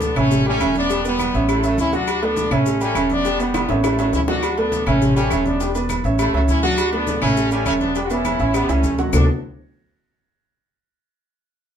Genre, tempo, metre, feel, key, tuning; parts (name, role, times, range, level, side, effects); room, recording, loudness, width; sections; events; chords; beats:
latin, salsa; 204 BPM; 4/4; straight; D major; A4 = 440 Hz
clear trumpet section; melody; 0.0-9.3 s; F#3 to F#4; -23 LUFS; left 1 dB
warm baby grand piano; accompaniment; 0.0-9.3 s; D3 to G5; -21 LUFS; right 2 dB
upright bass; bass; 0.0-9.3 s; E1 to D2; -23 LUFS; left 1 dB
congas; percussion; 0.0-9.2 s; -26 LUFS; left 2 dB
cowbell and bongos; percussion; 0.0-9.2 s; -29 LUFS; left 6 dB
maracas; percussion; 0.0-9.2 s; -37 LUFS; left 7 dB
agogo bells and timbales; percussion; 0.2-9.2 s; -28 LUFS; right 5 dB
claves; percussion; 0.2-9.2 s; -32 LUFS; left 5 dB
wet small room reverb, RT60 0.5 s; band playing live in one room; -16 LUFS; side -8 dB against mid
0.0-9.1 A section; 9.1-10.3 B section
drum fill 3.5-4.4, 8.7-9.1
0.3 A7; 0.9 Em7; 1.5 A; 2.1 D6; 2.7 A7; 3.3 Em7; 3.8 A; 4.4 D6; 5.0 A7; 5.6 Em7; 6.2 A; 6.8 D6; 7.4 A7; 8.0 Em7; 8.5 A7; 9.1 D6
0.01 0.31 0.60 | 0.90 1.19 1.49 1.78 | 2.08 2.37 2.66 2.96 | 3.25 3.55 3.84 4.13 | 4.43 4.72 5.02 5.31 | 5.60 5.90 6.19 6.49 | 6.78 7.07 7.37 7.66 | 7.96 8.25 8.54 8.84 | 9.13